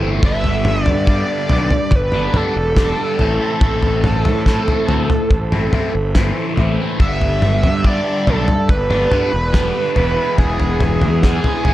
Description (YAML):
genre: psychedelic rock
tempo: 71 BPM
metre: 4/4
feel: straight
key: A minor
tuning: A4 = 439 Hz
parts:
  - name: ensemble organ-string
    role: sustained chords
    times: 0.0-11.7 s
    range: G#4 to B5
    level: -32 LUFS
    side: right 4 dB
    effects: none
  - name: overdriven semi-hollow guitar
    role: riff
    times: 0.0-11.7 s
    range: G2 to E4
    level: -21 LUFS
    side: left 1 dB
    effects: phaser
  - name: fuzz fingered electric bass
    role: bass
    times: 0.0-11.7 s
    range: E1 to A2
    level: -20 LUFS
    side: equal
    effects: overdrive
  - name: cloth-damped thuddy drum kit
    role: drums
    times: 0.2-11.7 s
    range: kick drum, snare drum, toms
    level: -17 LUFS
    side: equal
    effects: none
  - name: overdriven synth lead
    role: melody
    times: 0.3-11.7 s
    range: G#4 to E5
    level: -20 LUFS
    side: right 1 dB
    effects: distortion, dub echo
room: light reverb, small room ambience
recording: echo-heavy mix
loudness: -14 LUFS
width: side -14 dB against mid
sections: 0.0-11.7 A section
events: none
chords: 0.2 Gadd9; 3.2 Amadd9; 7.0 Gadd9; 10.0 E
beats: | 0.23 1.08 1.92 2.77 | 3.62 4.46 5.31 6.16 | 7.00 7.85 8.70 9.55 | 10.39 11.24